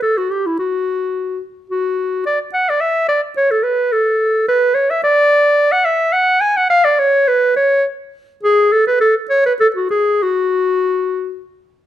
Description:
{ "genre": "classical, baroque-style fantasia for unaccompanied clarinet", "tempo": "94-110 BPM", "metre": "3/4", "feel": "rubato", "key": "F# minor from 5.0 s", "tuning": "A4 = 439 Hz", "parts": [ { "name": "clear clarinet", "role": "solo", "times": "0.0-11.5 s", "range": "E4 to G#5", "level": "-13 LUFS", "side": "equal", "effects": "none" } ], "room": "moderate stone room reverb, RT60 1.1 s", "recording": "none", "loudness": "-13 LUFS", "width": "side -12 dB against mid", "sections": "0.0-11.9 A section", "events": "none", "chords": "none" }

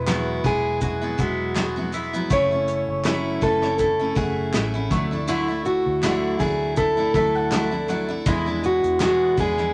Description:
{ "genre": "acoustic pop", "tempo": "81 BPM", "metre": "4/4", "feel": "swing 55% on 16ths", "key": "unclear", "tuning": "A4 = 440 Hz", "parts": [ { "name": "fingerpicked plugged-in steel-string acoustic guitar", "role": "melody", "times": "0.0-9.7 s", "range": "E4 to C#5", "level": "-25 LUFS", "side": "equal", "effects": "none" }, { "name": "picked steel-string acoustic guitar", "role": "accompaniment", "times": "0.0-9.7 s", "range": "E2 to E4", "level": "-29 LUFS", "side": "equal", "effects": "none" }, { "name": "mandolin", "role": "arpeggios", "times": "0.0-9.7 s", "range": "G#3 to F#5", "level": "-36 LUFS", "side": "equal", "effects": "none" }, { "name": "vintage muted fingered electric bass", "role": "bass", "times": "0.0-9.7 s", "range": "E1 to E2", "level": "-32 LUFS", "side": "equal", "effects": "none" }, { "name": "vintage brush drum kit", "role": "drums", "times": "0.1-9.7 s", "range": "kick drum, shaker, snare drum", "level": "-29 LUFS", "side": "equal", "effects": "none" }, { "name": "group handclap", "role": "percussion", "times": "0.1-9.2 s", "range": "none", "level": "-39 LUFS", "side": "equal", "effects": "none" } ], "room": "moderate studio reverb, RT60 0.5 s", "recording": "none", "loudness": "-22 LUFS", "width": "mono", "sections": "0.0-9.7 A section", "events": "none", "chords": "0.0 Eadd9; 2.3 F#m7; 4.9 Dadd9; 8.3 E7" }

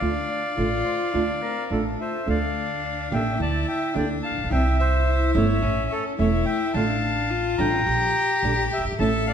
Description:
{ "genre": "tango", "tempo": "107 BPM", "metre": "4/4", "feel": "rubato", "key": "D minor", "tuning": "A4 = 440 Hz", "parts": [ { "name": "bandoneon", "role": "melody", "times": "0.0-9.3 s", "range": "A4 to Bb5", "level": "-25 LUFS", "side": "left 1 dB", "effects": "none" }, { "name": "rich cello", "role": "second line", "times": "0.0-9.3 s", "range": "C4 to A4", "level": "-29 LUFS", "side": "left 4 dB", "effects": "none" }, { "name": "nylon-string guitar", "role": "accompaniment", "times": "0.0-9.1 s", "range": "C3 to G4", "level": "-27 LUFS", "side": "right 2 dB", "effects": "none" }, { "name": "upright bass", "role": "bass", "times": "0.0-9.3 s", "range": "E1 to D2", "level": "-26 LUFS", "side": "right 2 dB", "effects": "none" }, { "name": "silver concert flute", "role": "second line", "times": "0.3-2.3 s", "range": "A4 to D5", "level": "-35 LUFS", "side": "right 2 dB", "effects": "none" } ], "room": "moderate scoring stage reverb, RT60 1.6 s", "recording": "none", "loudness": "-21 LUFS", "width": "side -8 dB against mid", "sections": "0.0-2.3 A section; 2.3-9.3 B section", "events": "none", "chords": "0.0 Dm; 3.4 Gm/D; 4.5 C; 5.6 A; 6.7 Dm/A; 7.9 Gm/Bb" }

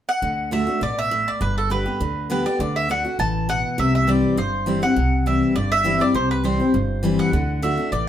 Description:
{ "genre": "bluegrass", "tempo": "203 BPM", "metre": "4/4", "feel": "straight", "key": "D mixolydian", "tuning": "A4 = 440 Hz", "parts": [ { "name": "mandolin", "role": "melody", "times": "0.1-8.1 s", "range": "A4 to A5", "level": "-23 LUFS", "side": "right 1 dB", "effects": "none" }, { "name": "picked steel-string acoustic guitar", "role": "accompaniment", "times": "0.2-8.1 s", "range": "G2 to G4", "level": "-22 LUFS", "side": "left 2 dB", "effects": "none" }, { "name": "upright bass", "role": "bass", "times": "0.2-8.1 s", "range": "G1 to D2", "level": "-25 LUFS", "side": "right 1 dB", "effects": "none" } ], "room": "moderate studio reverb, RT60 0.8 s", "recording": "band playing live in one room", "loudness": "-18 LUFS", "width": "side -10 dB against mid", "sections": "0.2-8.1 A section", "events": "none", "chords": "0.2 D; 1.4 G; 2.6 D; 3.8 C; 7.3 D" }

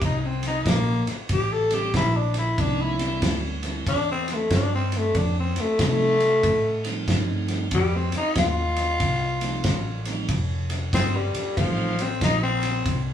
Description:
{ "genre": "electric blues shuffle", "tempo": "93 BPM", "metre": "4/4", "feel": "swing 63% on 8ths", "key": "unclear", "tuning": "A4 = 440 Hz", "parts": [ { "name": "growling tenor saxophone", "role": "melody", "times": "0.0-13.1 s", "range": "F3 to A4", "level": "-24 LUFS", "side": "left 2 dB", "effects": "none" }, { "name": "vintage muted fingered electric bass", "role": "bass", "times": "0.0-13.1 s", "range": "F1 to C3", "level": "-26 LUFS", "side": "equal", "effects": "none" }, { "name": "warm soul drum kit", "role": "drums", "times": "0.0-13.0 s", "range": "kick drum, ride cymbal, snare drum", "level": "-27 LUFS", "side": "equal", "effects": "none" }, { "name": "tonewheel organ", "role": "accompaniment", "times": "1.7-11.9 s", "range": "E3 to E4", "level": "-30 LUFS", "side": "right 3 dB", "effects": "slow rotary speaker" } ], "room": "wet studio reverb, RT60 0.6 s", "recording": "band playing live in one room, small room ambience", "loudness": "-21 LUFS", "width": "side -9 dB against mid", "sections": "0.0-13.1 A section", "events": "tenor saxophone solo 0.0-13.1", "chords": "0.0 C9; 5.2 F9" }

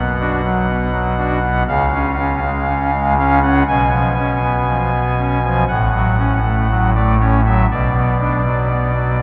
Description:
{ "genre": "classical, chorale-style piece for pipe organ", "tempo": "60 BPM", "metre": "4/4", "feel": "rubato", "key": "unclear", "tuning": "A4 = 440 Hz", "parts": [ { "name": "pipe organ, soft reed", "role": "solo", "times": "0.0-9.2 s", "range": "A1 to G#5", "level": "-16 LUFS", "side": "equal", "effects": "none" } ], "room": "wet cathedral reverb, RT60 4.2 s", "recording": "dark, warm production", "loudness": "-16 LUFS", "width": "mono", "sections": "0.0-9.2 A section", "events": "none", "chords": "0.0 Bm; 1.7 C#; 3.7 C#7/B; 5.7 F#m/A; 7.7 Bm" }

